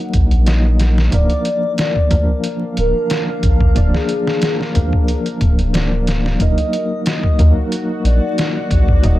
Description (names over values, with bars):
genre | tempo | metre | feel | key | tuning
trip hop | 91 BPM | 4/4 | swing 54% on 16ths | Eb harmonic minor | A4 = 440 Hz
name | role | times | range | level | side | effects
bell-like tine electric piano | accompaniment | 0.0-9.2 s | F3 to Eb5 | -22 LUFS | equal | medium stereo tremolo
deep dark ambient pad | sustained chords | 0.0-9.2 s | D4 to Gb5 | -28 LUFS | left 2 dB | chorus, built-in reverb
soft dub sub bass | bass | 0.1-9.2 s | D1 to Eb2 | -14 LUFS | equal | none
trip hop sampler-style drum kit | drums | 0.1-9.2 s | hi-hat, kick drum, snare drum | -17 LUFS | equal | none
pure breathy sine lead | melody | 1.1-9.1 s | Ab4 to Eb5 | -22 LUFS | left 1 dB | phaser, lush chorus, vintage 12-bit sampler grit, tape echo
bowed-like drone | texture | 6.8-9.2 s | Gb4 | -32 LUFS | left 2 dB | built-in reverb
room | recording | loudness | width
digital ambience | dark, warm production, vinyl crackle | -13 LUFS | side -16 dB against mid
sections
0.0-9.2 A section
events
none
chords
0.0 Ebm; 1.1 Bb/D; 6.4 Ebm